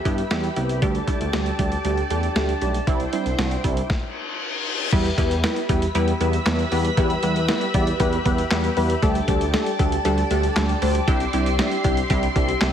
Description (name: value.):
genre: synth-pop.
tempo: 117 BPM.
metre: 4/4.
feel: straight.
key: E minor.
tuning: A4 = 436 Hz.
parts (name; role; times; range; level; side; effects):
ensemble organ-string; sustained chords; 0.0-12.7 s; E4 to C6; -28 LUFS; equal; phaser, ensemble chorus.
downlifter and reverse cymbal; sound effects; 0.0-0.8, 4.1-4.9 s; none; -28 LUFS; left 5 dB; none.
funky polysynth comp; accompaniment; 0.1-12.7 s; G3 to D5; -23 LUFS; right 1 dB; chorus.
smooth gliding synth bass; bass; 0.1-12.7 s; B1 to G2; -24 LUFS; equal; none.
boom bap sampler-style drum kit; drums; 0.1-12.7 s; crash cymbal, handclaps, hi-hat, kick drum, snare drum; -24 LUFS; equal; none.
room: moderate digital room reverb, RT60 1.2 s.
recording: heavily compressed radio sound.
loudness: -19 LUFS.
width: side -9 dB against mid.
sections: 0.0-4.9 A section; 4.9-12.7 B section.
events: stop 3.9-4.9; reverse cymbal 4.1-4.9.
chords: 0.0 Em; 0.8 Dsus4; 2.9 Cadd9; 4.9 Em; 9.0 Dsus4; 11.1 Cadd9.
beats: 0.31 | 0.82 1.33 1.85 2.36 | 2.87 3.38 3.90 4.41 | 4.92 5.44 5.95 6.46 | 6.97 7.49 8.00 8.51 | 9.03 9.54 10.05 10.56 | 11.08 11.59 12.10 12.62.